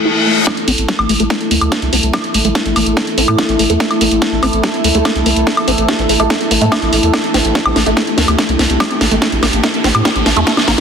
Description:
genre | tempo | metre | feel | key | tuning
psychedelic trance | 144 BPM | 4/4 | straight | unclear | A4 = 440 Hz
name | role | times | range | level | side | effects
pulsing gated texture | sustained chords | 0.0-10.8 s | A3 to A4 | -20 LUFS | left 2 dB | chorus, built-in reverb, sidechain pumping
reverse cymbal and riser | sound effects | 0.0-0.5, 9.4-10.8 s | none | -19 LUFS | left 4 dB | none
deep dark ambient pad | texture | 0.0-10.8 s | E4 to A5 | -20 LUFS | right 1 dB | chorus, built-in reverb, sidechain pumping
liquid acid bass | riff | 0.1-10.7 s | G3 to E4 | -20 LUFS | left 1 dB | phaser, auto-pan, sidechain pumping, dub echo
electronic kick drum | drums | 0.5-10.6 s | none | -16 LUFS | right 1 dB | overdrive, high-pass filter on kick
techno drum kit | drums | 0.5-10.8 s | hi-hat, snare drum, woodblock | -15 LUFS | right 1 dB | none
round analog bass | bass | 0.7-10.8 s | A1 to A2 | -18 LUFS | right 1 dB | tube saturation
room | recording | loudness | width
wet digital room reverb, RT60 1.2 s | dense, heavily limited modern master | -11 LUFS | side -7 dB against mid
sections
0.5-10.8 A section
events
reverse cymbal 0.0-0.5; build-up 0.5-10.8; drum fill 0.5-10.8; filter sweep on acid bass 0.5-10.8; filter sweep on synth texture 0.5-10.8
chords
0.5 A5

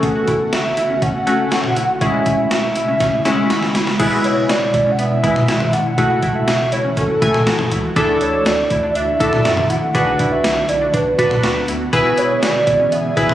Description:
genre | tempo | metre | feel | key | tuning
synth-pop | 121 BPM | 4/4 | straight | unclear | A4 = 440 Hz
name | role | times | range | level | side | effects
hollow clarinet-like synth lead | melody | 0.0-13.3 s | A4 to F#5 | -19 LUFS | right 1 dB | chorus, tape echo
warm analog keys | accompaniment | 0.0-13.3 s | G#3 to B5 | -19 LUFS | left 1 dB | chorus
ethereal airy pad | sustained chords | 0.0-13.3 s | B2 to G#4 | -24 LUFS | equal | ensemble chorus, built-in reverb
analog pluck | arpeggios | 0.0-13.3 s | B3 to G#4 | -26 LUFS | equal | chorus, tape echo
round analog bass | bass | 0.0-13.3 s | E1 to F#2 | -29 LUFS | equal | none
gated 80s digital drum machine | drums | 0.0-13.3 s | crash cymbal, hi-hat, kick drum, snare drum, toms | -21 LUFS | equal | gated reverb, gated reverb snare, overdrive
room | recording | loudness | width
moderate lush hall reverb, RT60 1.9 s, digital ambience | recorded on a phone in the room, club reverb, compression | -14 LUFS | side -12 dB against mid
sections
0.0-4.0 A section; 4.0-13.3 B section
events
drum fill 3.0-4.0; synth keys fill 3.3-4.0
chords
0.0 F#m; 2.0 E6; 4.0 E; 6.0 F#m7; 8.0 Dsus2; 9.9 Bm; 11.9 E

